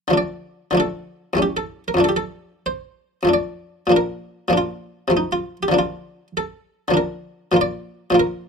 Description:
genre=classical, baroque-style suite movement for harpsichord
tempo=98 BPM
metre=3/4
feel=rubato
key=D minor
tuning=A4 = 440 Hz
part: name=buff-stop harpsichord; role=solo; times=0.0-8.5 s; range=E2 to D5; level=-17 LUFS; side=equal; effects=none
room=little or no reverb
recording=close, detailed microphones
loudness=-19 LUFS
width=side -6 dB against mid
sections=0.2-8.5 A section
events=none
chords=0.2 Dm; 1.4 A7/E; 2.0 Dm/F; 3.9 Bb; 5.1 F/C; 5.7 Bb/D; 7.6 Bb

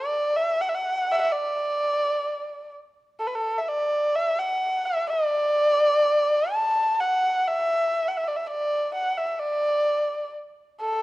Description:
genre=chinese traditional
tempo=63 BPM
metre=2/4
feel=rubato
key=unclear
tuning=A4 = 442 Hz
part: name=dark erhu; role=solo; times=0.0-11.0 s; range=A4 to A5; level=-22 LUFS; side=equal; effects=none
room=moderate recital hall reverb, RT60 1.6 s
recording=dark, warm production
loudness=-22 LUFS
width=side -18 dB against mid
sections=0.0-11.0 A section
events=none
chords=none

